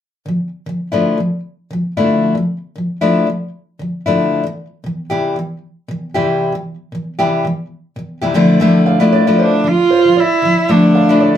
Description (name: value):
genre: pop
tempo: 115 BPM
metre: 4/4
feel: swing 55% on 16ths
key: D minor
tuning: A4 = 442 Hz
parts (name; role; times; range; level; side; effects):
- picked steel-string acoustic guitar; accompaniment; 0.3-11.4 s; C3 to G4; -14 LUFS; left 2 dB; none
- nylon-string guitar; arpeggios; 8.9-11.4 s; C5 to F5; -20 LUFS; right 4 dB; none
- rich cello; melody; 9.4-11.4 s; A3 to F4; -12 LUFS; right 3 dB; none
room: wet small room reverb, RT60 0.5 s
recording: heard from further back in the room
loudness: -13 LUFS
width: side -10 dB against mid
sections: 0.3-8.6 A section; 8.6-11.4 B section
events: none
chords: 0.3 Dmadd9; 4.4 C; 8.3 Dmadd9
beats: | 0.26 0.78 1.30 1.82 | 2.35 2.87 3.39 3.91 | 4.43 4.96 5.48 6.00 | 6.52 7.04 7.57 8.09 | 8.61 9.13 9.65 10.17 | 10.69 11.21